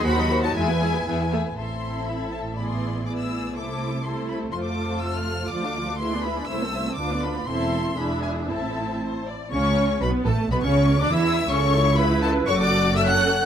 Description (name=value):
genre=quick classical-period movement for string orchestra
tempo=122 BPM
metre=2/4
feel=straight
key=A minor, A major from 9.5 s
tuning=A4 = 444 Hz
part: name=rich studio violin section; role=melody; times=0.0-13.4 s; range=G#5 to F#6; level=-28 LUFS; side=left 3 dB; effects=none
part: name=rich studio violin section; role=second line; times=0.0-13.5 s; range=D4 to G#5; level=-29 LUFS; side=left 6 dB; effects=none
part: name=warm studio viola section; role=accompaniment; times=0.0-13.4 s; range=D#3 to B4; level=-27 LUFS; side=right 2 dB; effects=none
part: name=rich studio cello section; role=bass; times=0.0-13.5 s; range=C2 to F#4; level=-29 LUFS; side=right 1 dB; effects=none
part: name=rich studio double bass section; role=bass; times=0.1-13.5 s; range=E1 to E2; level=-27 LUFS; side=right 2 dB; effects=none
room=moderate recital hall reverb, RT60 1.5 s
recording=none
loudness=-21 LUFS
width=side -9 dB against mid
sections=0.0-1.6 A section; 1.6-9.5 A section; 9.5-13.5 A section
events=none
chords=0.0 D#dim7; 0.6 E; 1.6 Am; 2.6 E7/A; 3.6 Am/C; 4.5 F; 5.5 Dm; 6.0 E7/D; 6.5 Am/C; 7.0 Bdim/D; 7.5 Am/E; 8.0 E7; 8.5 Am; 9.5 A/C#; 10.5 E5; 11.5 A/C#; 12.5 F#m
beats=0.05 | 0.56 1.07 | 1.58 2.08 | 2.58 3.07 | 3.56 4.05 | 4.54 5.03 | 5.52 6.01 | 6.50 6.99 | 7.48 7.98 | 8.49 9.00 | 9.51 10.01 | 10.51 11.00 | 11.49 11.98 | 12.48 12.97